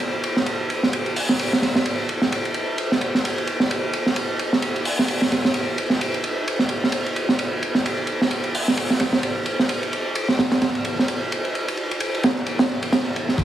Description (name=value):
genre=breakbeat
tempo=130 BPM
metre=4/4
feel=swing 57% on 16ths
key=none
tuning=none
part: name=crunchy breakbeat drum kit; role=drums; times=0.0-13.4 s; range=hi-hat, kick drum, ride cymbal, snare drum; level=-20 LUFS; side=right 1 dB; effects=none
room=light reverb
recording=heavily compressed radio sound, small room ambience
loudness=-20 LUFS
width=side -11 dB against mid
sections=0.0-13.4 A section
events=none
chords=none